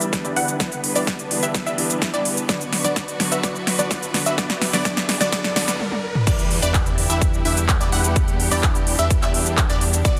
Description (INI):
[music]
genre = EDM, festival progressive house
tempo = 127 BPM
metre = 4/4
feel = straight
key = E minor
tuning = A4 = 441 Hz
[part]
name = warm concert grand piano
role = accompaniment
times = 0.0-5.6 s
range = D3 to D4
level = -32 LUFS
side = equal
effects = sidechain pumping, dub echo
[part]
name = warm studio string section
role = sustained chords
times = 0.0-10.2 s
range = B2 to B4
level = -32 LUFS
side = equal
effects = sidechain pumping, low-pass filter
[part]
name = unison pluck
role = arpeggios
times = 0.0-10.2 s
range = D5 to F#5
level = -30 LUFS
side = equal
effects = sidechain pumping, dub echo
[part]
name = supersaw stab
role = riff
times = 0.0-10.2 s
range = B3 to F#5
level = -30 LUFS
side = equal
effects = sidechain pumping, low-pass filter, dub echo
[part]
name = fat analog bass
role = bass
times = 0.0-10.2 s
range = B1 to E2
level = -30 LUFS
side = equal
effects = sidechain pumping, high-pass filter
[part]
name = big-room dance drum kit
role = drums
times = 0.0-10.2 s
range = crash cymbal, handclaps, hi-hat, shaker, snare drum, toms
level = -25 LUFS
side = equal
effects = overdrive
[part]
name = riser and impact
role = sound effects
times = 3.1-8.2 s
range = none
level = -37 LUFS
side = equal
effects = none
[part]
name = electronic kick drum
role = drums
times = 0.1-10.1 s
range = none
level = -23 LUFS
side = equal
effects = overdrive, high-pass filter on kick
[sound]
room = light reverb, digital ambience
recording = dense, heavily limited modern master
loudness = -20 LUFS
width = mono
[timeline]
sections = 0.0-6.3 A section; 6.3-10.2 B section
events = build-up 0.0-6.3; drum fill 0.0-5.8, 5.8-6.3; filter sweep on supersaw synth 0.0-6.3; filter sweep on string section 0.0-6.3; drop 6.3-10.2; impact 6.3-8.2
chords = 0.0 Em7; 2.5 Bm; 6.3 Em7